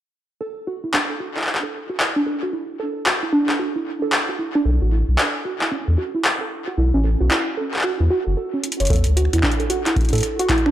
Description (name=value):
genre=IDM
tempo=113 BPM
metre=4/4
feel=swing 62% on 16ths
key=unclear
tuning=A4 = 440 Hz
part: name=warbly dusty pluck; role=arpeggios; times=0.4-10.7 s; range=C#4 to C#5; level=-23 LUFS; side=right 2 dB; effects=lush chorus, digital delay
part: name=booming analog drum machine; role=drums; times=0.9-10.7 s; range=finger snaps, handclaps, hi-hat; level=-22 LUFS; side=left 1 dB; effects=tape echo
part: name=warm sub bass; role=bass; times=4.7-10.2 s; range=F#1 to A2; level=-18 LUFS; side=equal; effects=none
part: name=electronic kick drum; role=drums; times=8.9-10.6 s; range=none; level=-21 LUFS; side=equal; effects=none
room=moderate plate reverb, RT60 1.3 s, digital ambience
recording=blown-out, overdriven recording, overdrive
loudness=-18 LUFS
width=side -12 dB against mid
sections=0.4-8.9 A section; 8.9-10.7 B section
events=drum fill 8.6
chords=0.4 E9sus4; 4.7 B9sus4; 8.9 E9sus4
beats=| 0.41 0.94 1.47 2.00 | 2.53 3.06 3.59 4.12 | 4.65 5.18 5.72 6.25 | 6.78 7.31 7.84 8.37 | 8.90 9.43 9.96 10.49